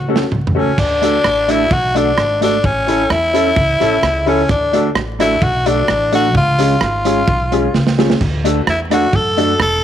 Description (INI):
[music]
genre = ska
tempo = 129 BPM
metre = 4/4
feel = straight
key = unclear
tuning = A4 = 440 Hz
[part]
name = raspy tenor saxophone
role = melody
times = 0.0-9.8 s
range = C#4 to A4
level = -16 LUFS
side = left 1 dB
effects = none
[part]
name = upright bass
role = bass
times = 0.0-9.8 s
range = E1 to F#2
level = -21 LUFS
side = equal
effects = none
[part]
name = mellow electric guitar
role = accompaniment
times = 0.1-9.5 s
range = G#3 to A4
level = -21 LUFS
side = right 8 dB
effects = slapback echo
[part]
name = dark upright piano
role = stabs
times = 0.1-9.5 s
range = C#4 to A4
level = -20 LUFS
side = left 9 dB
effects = none
[part]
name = crunchy breakbeat drum kit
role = drums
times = 0.2-9.7 s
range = crash cymbal, hi-hat, kick drum, rim click, snare drum, toms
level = -19 LUFS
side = right 3 dB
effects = none
[sound]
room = light reverb, small room ambience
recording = 1960s-style stereo with parts hard left and right, vinyl crackle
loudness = -12 LUFS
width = side -10 dB against mid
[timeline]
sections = 0.8-9.8 A section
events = drum fill 0.0-0.8, 7.7-8.2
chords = 0.0 F#m; 0.8 D; 2.6 A; 4.5 D; 6.3 C#; 8.2 D